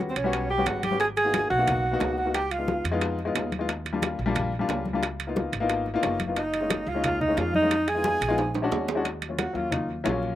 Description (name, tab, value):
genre	Afro-Cuban jazz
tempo	179 BPM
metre	4/4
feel	straight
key	Eb minor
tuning	A4 = 440 Hz
part	warm upright piano	accompaniment	0.0-10.4 s	Gb3 to Db5	-28 LUFS	left 4 dB	slapback echo
part	upright bass	bass	0.0-10.4 s	Gb1 to F2	-33 LUFS	right 1 dB	none
part	timbales	percussion	0.0-10.2 s	none	-32 LUFS	right 7 dB	slapback echo
part	breathy alto saxophone	melody	0.1-2.8, 6.4-9.9 s	C4 to Ab4	-26 LUFS	equal	none
part	breathy bright concert flute	second line	0.1-2.8, 6.4-8.6 s	C5 to Ab5	-31 LUFS	right 3 dB	slapback echo
part	bongos	percussion	0.2-10.4 s	none	-36 LUFS	left 5 dB	slapback echo
part	congas	percussion	0.3-10.2 s	none	-34 LUFS	left 1 dB	none
room	little or no reverb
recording	recorded outdoors, with no room sound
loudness	-24 LUFS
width	side -13 dB against mid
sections	0.0-9.1 A section; 9.1-10.4 B section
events	upright piano fill 5.9-6.4; drum fill 8.0-9.1; alto saxophone solo 9.1-10.4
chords	0.0 Eb7#9b13 (rootless); 1.0 Abm9; 2.3 Db9; 3.7 Ebmaj7; 5.0 Db13; 6.4 Gb6; 7.7 Fm7b5; 8.4 Bb7alt; 9.1 Ebm9